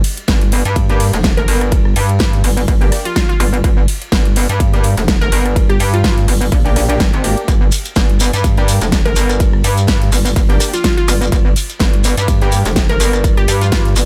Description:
bass house; 125 BPM; 4/4; swing 56% on 16ths; G minor; A4 = 440 Hz
metallic wobble bass; bass; 0.0-14.1 s; F1 to G2; -18 LUFS; equal; chorus, tube saturation, sidechain pumping
big-room dance drum kit; drums; 0.0-14.1 s; hi-hat, rim click, snare drum; -23 LUFS; equal
swinging big-band drum kit; drums; 0.0-14.1 s; hi-hat, ride cymbal, snare drum; -34 LUFS; equal
electronic kick drum; drums; 0.3-13.8 s; -17 LUFS; equal
orchestra-hit-like synth stab; stabs; 0.9-12.6 s; Bb3 to G4; -25 LUFS; equal; built-in reverb, sidechain pumping, tape echo
glassy wavetable pluck; melody; 1.4-6.1, 9.1-13.8 s; F4 to Bb4; -23 LUFS; equal; chorus, tape echo
shekere; percussion; 7.5-14.1 s; -25 LUFS; equal
little or no reverb; -14 LUFS; mono
0.0-14.1 A section
0.0 Gm

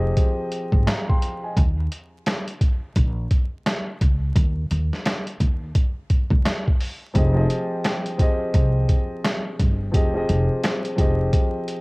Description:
hip hop, boom-bap hip-hop; 86 BPM; 4/4; swing 61% on 16ths; A4 = 440 Hz
dark baby grand piano; accompaniment; 0.0-1.6, 7.1-11.8 s; F3 to C6; -25 LUFS; equal; cassette tape, high-pass filter, low-pass filter
upright bass; bass; 0.0-11.3 s; F1 to F2; -22 LUFS; equal
boom bap sampler-style drum kit; drums; 0.2-11.8 s; hi-hat, kick drum, snare drum; -20 LUFS; equal; cassette tape
small room ambience; home recording on cassette, vinyl crackle; -19 LUFS; side -27 dB against mid
0.0-11.8 A section
0.0 Fm7; 1.6 Eb5; 4.4 N.C.; 7.1 Fm7

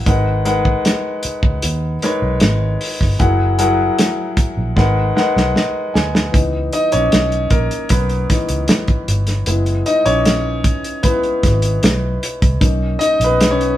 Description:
lush 1970s-style soul; 76 BPM; 4/4; straight; A4 = 443 Hz
clear grand piano; accompaniment; 0.0-13.8 s; E3 to G#5; -18 LUFS; left 2 dB
vintage muted fingered electric bass; bass; 0.1-13.7 s; F#1 to D#2; -19 LUFS; equal
warm soul drum kit; drums; 0.1-13.8 s; hi-hat, kick drum, snare drum; -16 LUFS; equal
moderate large studio reverb, RT60 0.9 s; band playing live in one room; -14 LUFS; side -13 dB against mid
0.0-6.3 A section; 6.3-13.8 B section
drum fill 4.8-6.3; grand piano fill 5.2-6.3; grand piano solo 6.3-13.8
0.1 G#m7; 3.2 F#7; 4.8 G#m7; 6.3 C#m7; 9.5 F#9sus4 (rootless); 12.6 Bmaj9

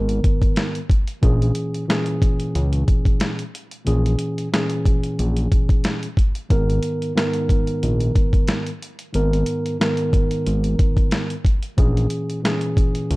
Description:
hip hop, boom-bap hip-hop; 91 BPM; 4/4; swing 54% on 16ths; G# minor; A4 = 439 Hz
mellow tine electric piano; accompaniment; 0.0-13.2 s; G#2 to A#4; -23 LUFS; equal; high-pass filter, low-pass filter
fat analog bass; bass; 0.0-13.2 s; G#1 to C#2; -19 LUFS; equal
boom bap sampler-style drum kit; drums; 0.1-13.2 s; hi-hat, kick drum, snare drum; -19 LUFS; equal; vintage 12-bit sampler grit
little or no reverb; dark, warm production; -18 LUFS; side -22 dB against mid
0.0-13.2 A section
0.0 G#madd9; 1.2 A#m7b5; 6.5 G#madd9; 11.8 A#m7b5

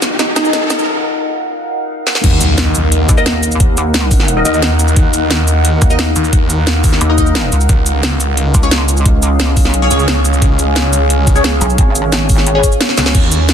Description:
dark technical drum and bass; 176 BPM; 4/4; straight; Eb minor; A4 = 441 Hz
deep dark ambient pad; sustained chords; 0.0-13.5 s; Db4 to Gb5; -18 LUFS; equal; chorus, built-in reverb, sidechain pumping
filtered dub chord stab; stabs; 0.0-0.5, 3.2-12.6 s; Db4 to Eb5; -20 LUFS; left 3 dB; phaser, lush chorus, cassette tape, ping-pong delay
drum and bass drum kit; drums; 0.0-13.5 s; cabasa, crash cymbal, hi-hat, snare drum; -16 LUFS; equal
riser and impact; sound effects; 0.0-3.6 s; -20 LUFS; equal
wide unison pluck; arpeggios; 0.2-0.8 s; Eb4; -20 LUFS; right 1 dB; sidechain pumping, ping-pong delay
snarling distorted saw bass; bass; 2.2-13.5 s; Db2 to Eb2; -14 LUFS; equal; distortion, overdrive
electronic kick drum; drums; 2.2-13.2 s; -12 LUFS; equal
pulsing pluck wobble bass; bass; 3.1-12.6 s; Ab1 to Eb2; -14 LUFS; equal; chorus
light reverb; dense, heavily limited modern master, high-pass filter; -10 LUFS; side -8 dB against mid
0.0-2.2 A section; 2.2-13.5 B section
build-up 0.0-2.2; drum fill 0.0-0.9, 2.1, 12.9; riser 0.0-0.9; filter sweep on ambient pad 0.0-2.2; filter sweep on synth stab 0.0-2.2; break 0.9-2.2; drop 2.2-13.5; impact 2.2-3.6
0.0 Ebmadd9; 7.7 Db

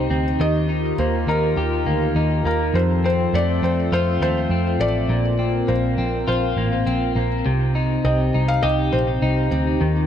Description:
dream pop; 102 BPM; 4/4; straight; C dorian; A4 = 439 Hz
felt-muted upright piano; melody; 0.0-9.5 s; Bb4 to F5; -25 LUFS; left 2 dB; ping-pong delay
hollow soft pad; sustained chords; 0.0-10.1 s; Eb3 to Bb4; -26 LUFS; right 1 dB; chorus
electric guitar at the edge of break-up; arpeggios; 0.0-10.1 s; F2 to G4; -23 LUFS; left 2 dB; wide subtle chorus, ping-pong delay
vintage muted picked electric bass; bass; 0.0-10.1 s; A1 to F2; -22 LUFS; right 1 dB
moderate plate reverb, RT60 2.9 s; -18 LUFS; side -9 dB against mid
0.0-10.1 A section
0.4 Ebadd9; 2.7 F; 5.1 Bbsus2; 7.5 Cm

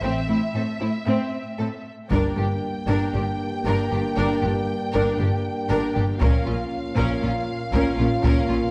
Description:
cinematic, epic orchestral film score; 117 BPM; 4/4; straight; G dorian; A4 = 440 Hz
warm symphonic violin section; melody; 0.0-8.7 s; E5 to G5; -35 LUFS; equal
clear symphonic violin section; second line; 0.0-8.6 s; C4 to Bb4; -32 LUFS; equal
rich symphonic viola section; accompaniment; 0.0-8.6 s; C4 to D4; -32 LUFS; equal
bright symphonic cello section; bass; 0.0-8.6 s; G2 to Bb2; -29 LUFS; equal
clear chamber double bass section; bass; 0.0-8.6 s; G1 to Bb1; -30 LUFS; equal
dark trombone section; sustained chords; 2.1-8.7 s; G2 to Bb3; -32 LUFS; equal
mellow French horn section; sustained chords; 2.1-8.7 s; Db4 to G4; -33 LUFS; equal
taiko ensemble; drums; 2.1-8.7 s; -27 LUFS; equal
moderate scoring stage reverb, RT60 1.6 s; dark, warm production; -23 LUFS; mono
0.0-2.1 A section; 2.1-8.7 B section
0.0 Am; 2.1 Gm; 6.2 Bbm

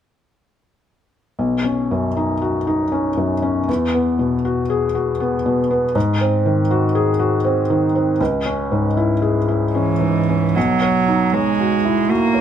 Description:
neoclassical piano and strings; 79 BPM; 3/4; rubato; B major; A4 = 440 Hz
felt-muted upright piano; accompaniment; 1.4-12.4 s; B1 to C#5; -17 LUFS; left 1 dB
clear cello; second line; 9.7-12.4 s; E3 to A#3; -17 LUFS; right 7 dB
light reverb; -16 LUFS; side -9 dB against mid
1.4-10.6 A section; 10.6-12.4 B section
1.4 Badd9; 3.7 Eadd9; 6.0 G#7; 8.2 C#m; 10.6 Badd9

